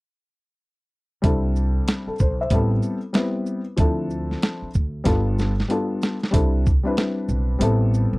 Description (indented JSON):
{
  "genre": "hip hop, jazz-hop",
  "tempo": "94 BPM",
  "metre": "4/4",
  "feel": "swing 63% on 16ths",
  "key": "C major",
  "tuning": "A4 = 440 Hz",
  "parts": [
    { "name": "dark upright piano", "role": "accompaniment", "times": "1.2-8.2 s", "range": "F3 to E5", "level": "-24 LUFS", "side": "left 2 dB", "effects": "none" },
    { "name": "upright bass", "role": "bass", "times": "1.2-8.2 s", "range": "G1 to D2", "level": "-22 LUFS", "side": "right 1 dB", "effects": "none" },
    { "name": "boom bap sampler-style drum kit", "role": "drums", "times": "1.2-8.1 s", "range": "hi-hat, kick drum, shaker, snare drum", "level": "-21 LUFS", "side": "equal", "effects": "none" }
  ],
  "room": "little or no reverb",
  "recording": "dry, close 1970s-style studio recording",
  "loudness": "-19 LUFS",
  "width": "side -22 dB against mid",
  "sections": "1.2-6.3 A section; 6.3-8.2 B section",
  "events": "drum fill 5.1-6.3",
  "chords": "1.2 C6; 2.5 Am9; 3.8 Dm7; 5.1 G7; 6.3 C6; 7.6 Am9",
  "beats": "| 1.23 1.87 2.51 3.15 | 3.79 4.42 5.06 5.70 | 6.34 6.98 7.62"
}